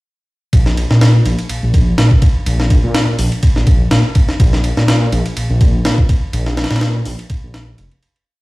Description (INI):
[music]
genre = breakbeat, breaks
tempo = 124 BPM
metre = 4/4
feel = swing 55% on 16ths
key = unclear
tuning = A4 = 440 Hz
[part]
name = dark detuned saw bass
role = bass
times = 0.5-7.9 s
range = F1 to Bb2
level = -14 LUFS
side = equal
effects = none
[part]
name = breakbeat sampler-style drum kit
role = drums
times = 0.5-8.3 s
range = hi-hat, kick drum, ride cymbal, snare drum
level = -14 LUFS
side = equal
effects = none
[sound]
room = digital ambience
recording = played on a big sound system in a bare room, stone room reverb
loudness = -11 LUFS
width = side -21 dB against mid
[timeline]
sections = 0.5-8.3 drop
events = drop 0.5-8.3; fade-out 5.7-8.3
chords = none